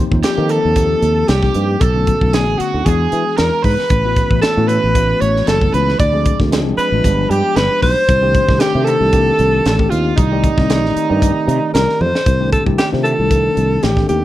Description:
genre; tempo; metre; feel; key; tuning
electric jazz fusion; 115 BPM; 4/4; swing 54% on 16ths; unclear; A4 = 441 Hz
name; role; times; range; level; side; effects
tine electric piano; accompaniment; 0.0-14.2 s; D3 to D5; -21 LUFS; left 2 dB; medium stereo tremolo
sustaining fretless electric bass; bass; 0.0-14.2 s; F#1 to E3; -17 LUFS; equal; wide subtle chorus
tight funk drum kit; drums; 0.1-14.2 s; hi-hat, kick drum, snare drum, toms; -18 LUFS; equal; none
clear alto saxophone; melody; 0.2-14.2 s; Eb4 to D5; -17 LUFS; equal; none
overdriven electric guitar; second line; 0.2-11.7 s; Eb4 to D5; -24 LUFS; right 9 dB; slapback echo
room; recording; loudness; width
light reverb, studio ambience; dark, warm production; -12 LUFS; side -14 dB against mid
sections
0.0-12.3 A section; 12.3-14.2 A section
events
drum fill 12.0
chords
0.0 Eb6; 1.8 Bm9; 2.9 E7; 3.9 A69; 6.0 Dm7b5; 7.0 G7b9; 8.1 Cm69

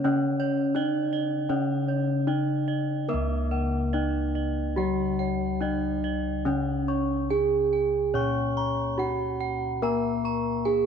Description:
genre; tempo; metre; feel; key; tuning
Javanese gamelan; 71-87 BPM; 4/4; straight; C# pelog barang; A4 = 441 Hz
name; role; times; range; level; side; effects
gamelan-type bronze metallophone; melody; 0.0-10.9 s; A#3+20c to C#5; -27 LUFS; right 3 dB; none
gamelan-type bronze metallophone; accompaniment; 0.0-10.9 s; C#3 to C#4; -31 LUFS; left 11 dB; none
gamelan-type bronze metallophone; arpeggios; 0.0-10.9 s; A#4+20c to C#6; -33 LUFS; right 10 dB; none
gamelan-type bossed gongs; bass; 0.0-10.9 s; C#2 to A#4+20c; -31 LUFS; equal; none
gamelan-type bossed gongs; arpeggios; 0.1-10.9 s; C#5 to C#6; -38 LUFS; left 8 dB; none
room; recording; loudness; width
moderate plate reverb, RT60 3.3 s; 1960s-style stereo with parts hard left and right; -24 LUFS; side -7 dB against mid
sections
0.0-3.1 A section; 3.1-10.9 B section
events
none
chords
none

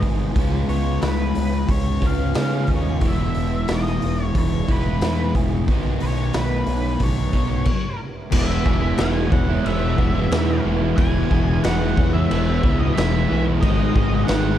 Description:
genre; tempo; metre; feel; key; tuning
rock, shoegaze and dream pop; 90 BPM; 4/4; straight; unclear; A4 = 438 Hz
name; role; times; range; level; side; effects
direct-recorded clean electric guitar; arpeggios; 0.0-14.6 s; D#3 to G#4; -32 LUFS; right 4 dB; ensemble chorus, analog delay
overdriven semi-hollow guitar; riff; 0.0-14.6 s; G#2 to E#4; -27 LUFS; right 8 dB; reverse reverb
thick fuzz guitar; riff; 0.0-14.6 s; E2 to C#4; -25 LUFS; left 8 dB; distortion, wide subtle chorus
growling fingered electric bass; bass; 0.0-14.6 s; E1 to C#3; -24 LUFS; equal; overdrive
raw garage drum kit; drums; 0.0-14.4 s; crash cymbal, hi-hat, kick drum, snare drum; -22 LUFS; equal; none
octave-fuzz lead guitar; melody; 0.7-14.6 s; B4 to G#5; -30 LUFS; equal; distortion, analog delay
crunchy overdriven guitar; riff; 8.3-14.6 s; E2 to G#3; -29 LUFS; equal; none
room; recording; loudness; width
light reverb; cassette tape; -18 LUFS; side -11 dB against mid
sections
0.0-8.3 A section; 8.3-14.6 B section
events
stop 7.7-8.3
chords
0.4 C#7; 3.0 Emaj7; 5.7 Badd9; 8.3 E6; 13.6 G#m7

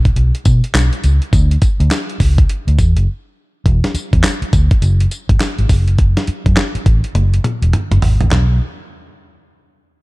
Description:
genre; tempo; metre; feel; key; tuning
R&B, new jack swing; 103 BPM; 4/4; swing 62% on 16ths; unclear; A4 = 439 Hz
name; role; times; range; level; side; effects
vintage muted fingered electric bass; bass; 0.0-8.6 s; E1 to B2; -13 LUFS; equal; none
dusty soul sampler-style drum kit; drums; 0.1-8.5 s; handclaps, hi-hat, kick drum, snare drum, tambourine, toms; -15 LUFS; equal; none
room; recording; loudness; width
digital ambience; dark, warm production; -12 LUFS; side -22 dB against mid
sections
0.0-3.7 A section; 3.7-8.3 B section; 8.3-10.0 C section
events
break 3.1-3.7; drum fill 7.2-8.3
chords
none

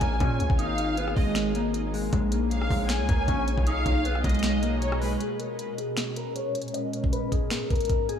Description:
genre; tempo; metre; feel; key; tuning
hip hop, trap; 156 BPM; 4/4; half-time; Bb phrygian; A4 = 439 Hz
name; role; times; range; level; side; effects
mellow electric guitar; melody; 0.0-8.2 s; Ab3 to Eb5; -30 LUFS; left 2 dB; phaser, low-pass filter, tape echo
dark studio violin section; second line; 0.0-5.2 s; B4 to Ab5; -33 LUFS; left 1 dB; tape echo
ethereal airy pad; sustained chords; 0.0-8.2 s; Ab2 to D#5; -33 LUFS; left 1 dB; ensemble chorus, built-in reverb, low-pass filter
distorted 808-style bass; bass; 0.0-5.2 s; Ab1 to Bb2; -28 LUFS; equal; distortion
trap drum kit; drums; 0.0-8.2 s; finger snaps, hi-hat, kick drum, rim click, snare drum; -28 LUFS; equal; none
room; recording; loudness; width
moderate lush hall reverb, RT60 1.9 s; dreamy mix soaked in reverb; -24 LUFS; side -8 dB against mid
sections
0.0-5.2 A section; 5.2-8.2 B section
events
filter sweep 5.2-8.2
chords
0.0 Bbm7; 0.6 Absus2; 2.1 Bbm7; 3.7 B6; 5.2 Bbm7; 6.7 Abmadd9

